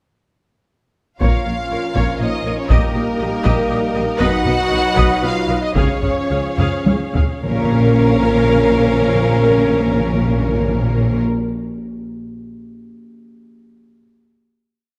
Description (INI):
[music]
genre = cinematic, epic orchestral film score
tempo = 102-120 BPM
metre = 3/4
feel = straight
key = Bb phrygian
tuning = A4 = 439 Hz
[part]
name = clear studio violin section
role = melody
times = 1.2-11.2 s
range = Bb4 to F#5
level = -27 LUFS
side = equal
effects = none
[part]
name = clear symphonic violin section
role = second line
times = 1.2-11.2 s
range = Bb4 to F#5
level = -30 LUFS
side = equal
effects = none
[part]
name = rich symphonic viola section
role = accompaniment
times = 1.2-11.2 s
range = Db4 to F5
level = -26 LUFS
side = equal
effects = none
[part]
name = mellow trombone section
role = sustained chords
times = 1.2-11.2 s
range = F3 to Eb4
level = -29 LUFS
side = equal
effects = none
[part]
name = rich symphonic string section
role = sustained chords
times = 1.2-11.2 s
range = F#3 to F5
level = -28 LUFS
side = equal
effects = none
[part]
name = warm French horn section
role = sustained chords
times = 1.2-11.2 s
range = Bb3 to Bb4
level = -25 LUFS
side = equal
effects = none
[part]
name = rich symphonic cello section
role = bass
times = 1.2-11.2 s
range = Bb2 to Db3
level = -25 LUFS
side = equal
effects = none
[part]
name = rich symphonic double bass section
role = bass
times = 1.2-11.2 s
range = Bb1 to Db2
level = -26 LUFS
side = equal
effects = none
[part]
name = taiko ensemble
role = drums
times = 1.2-7.4 s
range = none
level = -20 LUFS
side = equal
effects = none
[part]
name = timpani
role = percussion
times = 2.7-3.4, 7.4-11.2 s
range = Bb2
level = -24 LUFS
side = equal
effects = none
[sound]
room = moderate scoring stage reverb, RT60 1.8 s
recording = none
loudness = -17 LUFS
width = mono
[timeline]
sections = 1.2-7.4 theme; 7.4-11.0 final chord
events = slowing down 3.5-7.4; drum fill 6.6-7.4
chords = 1.2 Bbm; 2.7 Eb/Bb; 4.2 B; 5.8 Db; 7.4 Bbm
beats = | 1.21 1.71 2.21 | 2.71 3.21 3.71 | 4.21 4.72 5.23 | 5.76 6.30 6.86 | 7.44 8.03 8.61 | 9.20 9.79 10.38